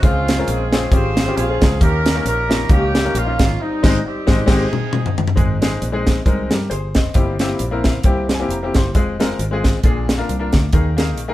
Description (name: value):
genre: uptempo gospel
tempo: 134 BPM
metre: 4/4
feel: swing 56% on 8ths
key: Ab major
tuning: A4 = 440 Hz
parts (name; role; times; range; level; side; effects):
- warm horn section; melody; 0.0-5.3 s; G3 to C5; -22 LUFS; right 1 dB; none
- bright upright piano; accompaniment; 0.0-11.3 s; G2 to C6; -22 LUFS; left 3 dB; none
- fingered electric bass; bass; 0.0-11.3 s; F1 to G2; -22 LUFS; equal; none
- tight funk drum kit; drums; 0.0-11.3 s; crash cymbal, hi-hat, kick drum, snare drum, toms; -16 LUFS; equal; none
room: moderate studio reverb, RT60 0.8 s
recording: band playing live in one room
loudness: -15 LUFS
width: side -15 dB against mid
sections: 0.0-5.4 A section; 5.4-11.3 B section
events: drum fill 3.6-5.4; band accent 3.6-5.4; upright piano fill 7.6-8.9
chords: 0.0 Dbmaj7; 1.8 Eb7; 3.6 Abmaj7; 5.4 Ab; 7.2 C7/G; 8.9 Fm; 9.8 Bb7; 10.7 Ebsus4